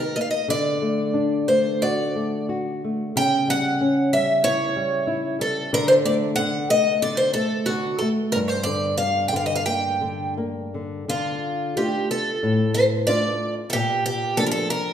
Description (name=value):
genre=fado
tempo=91 BPM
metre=4/4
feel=rubato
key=G minor, D minor from 11.1 s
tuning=A4 = 440 Hz
part: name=picked twelve-string acoustic guitar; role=melody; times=0.0-14.9 s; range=F4 to G5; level=-22 LUFS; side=right 1 dB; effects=none
part: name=nylon-string guitar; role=accompaniment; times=0.0-14.9 s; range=G2 to F#4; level=-24 LUFS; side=left 1 dB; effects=none
room=wet recital hall reverb, RT60 1.5 s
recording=minimal, uncompressed stereo recording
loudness=-20 LUFS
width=side -9 dB against mid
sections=0.0-11.1 A section; 11.1-14.9 B section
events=none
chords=0.5 D; 3.1 C#dim; 5.7 D5; 8.3 Gm; 11.1 Dm; 13.7 Bbmaj7